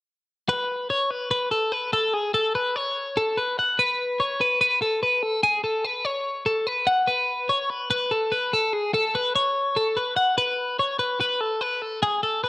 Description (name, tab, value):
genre	rock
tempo	146 BPM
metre	4/4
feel	straight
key	unclear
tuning	A4 = 440 Hz
part	twelve-string electric guitar	solo	0.5-12.5 s	G#4 to F#5	-21 LUFS	left 1 dB	spring reverb
room	little or no reverb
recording	dry, close 1970s-style studio recording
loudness	-21 LUFS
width	side -20 dB against mid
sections	0.5-12.5 A section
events	none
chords	none